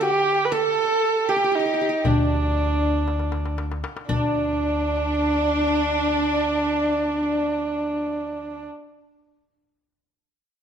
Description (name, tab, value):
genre	Turkish makam ensemble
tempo	118 BPM (eighths)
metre	10/8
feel	straight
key	unclear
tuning	A4 = 443 Hz
part	warm kamancheh	melody	0.0-8.7 s	D4 to B4-36c	-22 LUFS	right 2 dB	none
part	dark studio violin section	second line	0.0-8.7 s	D4 to A4	-28 LUFS	left 1 dB	none
part	qanun	second line	0.0-8.7 s	D4 to A4	-30 LUFS	left 1 dB	none
part	upright bass	bass	0.0-8.7 s	D2 to D3	-29 LUFS	equal	none
part	darbuka	percussion	0.5-4.6 s	none	-28 LUFS	left 2 dB	none
room	moderate recital hall reverb, RT60 1.4 s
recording	minimal, uncompressed stereo recording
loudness	-20 LUFS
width	side -8 dB against mid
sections	0.0-4.1 A section; 4.1-9.2 B section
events	drum fill 3.1-4.1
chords	none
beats	0.02 0.53 1.04 1.55 2.06 2.57 3.08 3.58 | 4.09 4.60 5.11 5.62 6.13 6.64 7.15 7.66 8.17